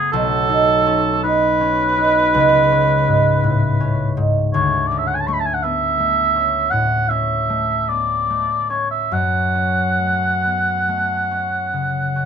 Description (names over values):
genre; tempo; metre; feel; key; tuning
classical, impressionist duo for oboe and harp; 45-56 BPM (dotted quarters); 12/8; rubato; F# minor; A4 = 440 Hz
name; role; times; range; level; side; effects
warm oboe; melody; 0.0-12.3 s; G#4 to C#6; -18 LUFS; right 1 dB; none
concert harp; accompaniment; 0.0-12.3 s; B1 to D#4; -18 LUFS; equal; none
room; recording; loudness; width
light reverb; close, detailed microphones; -15 LUFS; side -7 dB against mid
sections
0.0-12.3 A section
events
none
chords
0.1 Badd9; 2.3 C#5; 4.5 D5; 9.1 F#m